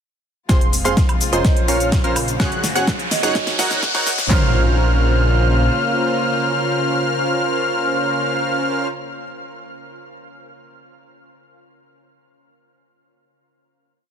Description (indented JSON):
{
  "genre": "EDM, festival progressive house",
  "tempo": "126 BPM",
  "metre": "4/4",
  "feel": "straight",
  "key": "Bb minor",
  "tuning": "A4 = 442 Hz",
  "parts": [
    { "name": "clear grand piano", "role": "accompaniment", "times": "0.5-9.3 s", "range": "C4 to Gb5", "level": "-27 LUFS", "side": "equal", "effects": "sidechain pumping, ping-pong delay" },
    { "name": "rich studio string section", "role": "sustained chords", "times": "0.5-8.9 s", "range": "C3 to C5", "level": "-27 LUFS", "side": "left 1 dB", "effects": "sidechain pumping" },
    { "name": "plucky unison lead", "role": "arpeggios", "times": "0.5-8.9 s", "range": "C6 to Gb6", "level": "-24 LUFS", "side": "left 1 dB", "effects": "phaser, sidechain pumping, ping-pong delay" },
    { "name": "supersaw stab", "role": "riff", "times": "0.5-8.9 s", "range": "Db4 to Gb5", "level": "-23 LUFS", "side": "right 1 dB", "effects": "sidechain pumping, low-pass filter, ping-pong delay" },
    { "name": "wide detuned saw bass", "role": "bass", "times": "0.5-5.7 s", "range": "Eb1 to Gb2", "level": "-20 LUFS", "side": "equal", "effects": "chorus, sidechain pumping" },
    { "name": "big-room dance drum kit", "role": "drums", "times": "0.5-4.4 s", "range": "handclaps, kick drum, toms", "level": "-18 LUFS", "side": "equal", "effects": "overdrive, small room ambience" },
    { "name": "pop drum kit", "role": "drums", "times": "0.5-4.3 s", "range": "hi-hat, shaker, snare drum, woodblock", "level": "-25 LUFS", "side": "left 1 dB", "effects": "small room ambience" },
    { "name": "riser", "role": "sound effects", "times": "1.9-4.3 s", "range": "none", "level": "-27 LUFS", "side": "left 1 dB", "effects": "none" },
    { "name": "vibraphone with hard mallets", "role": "melody", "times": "1.3-3.4 s", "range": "Db5 to Eb5", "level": "-29 LUFS", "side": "right 5 dB", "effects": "ping-pong delay" }
  ],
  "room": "light reverb, digital ambience",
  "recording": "dense, heavily limited modern master, high-pass filter",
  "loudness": "-15 LUFS",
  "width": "side -8 dB against mid",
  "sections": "0.5-4.3 build; 4.3-8.1 final chord",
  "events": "build-up 0.5-4.3; drum fill 0.5-4.3; filter sweep on supersaw synth 0.5-4.3; filter sweep 0.5-4.3; riser 1.9-4.3",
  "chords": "0.5 Fm; 1.4 Bbmadd9; 2.4 Gbsus2; 3.4 Ebm7; 4.3 Bbmadd9",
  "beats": "| 0.49 0.97 1.45 1.92 | 2.40 2.88 3.35 3.83 | 4.30 4.78 5.26 5.73 | 6.21 6.68 7.16 7.64"
}